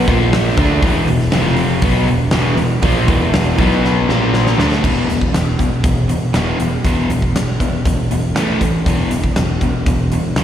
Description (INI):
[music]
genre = hard rock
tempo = 120 BPM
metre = 4/4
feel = straight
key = unclear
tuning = A4 = 438 Hz
[part]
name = crunchy overdriven guitar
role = riff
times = 0.0-10.4 s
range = E2 to D4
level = -20 LUFS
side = right 8 dB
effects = slapback echo
[part]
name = crunchy overdriven guitar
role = riff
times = 0.0-4.8 s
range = E2 to D4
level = -20 LUFS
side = left 1 dB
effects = slapback echo
[part]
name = overdriven semi-hollow guitar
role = riff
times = 0.0-10.4 s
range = E2 to D4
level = -20 LUFS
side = left 8 dB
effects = spring reverb, slapback echo
[part]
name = picked electric bass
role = bass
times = 0.0-10.4 s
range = E1 to E2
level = -19 LUFS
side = equal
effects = none
[part]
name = huge arena drum kit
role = drums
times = 0.1-10.4 s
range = crash cymbal, hi-hat, kick drum, snare drum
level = -18 LUFS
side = equal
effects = none
[sound]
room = little or no reverb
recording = live gig heard through the venue's PA, recital hall reverb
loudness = -13 LUFS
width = side -10 dB against mid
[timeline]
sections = 0.0-4.8 A section; 4.8-10.4 B section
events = drum fill 3.8-4.8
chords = 0.1 A#5; 0.6 E5; 1.3 F5; 1.8 E5; 3.6 B5; 4.1 A#5; 4.6 D5; 4.8 E5; 8.4 A5; 8.9 E5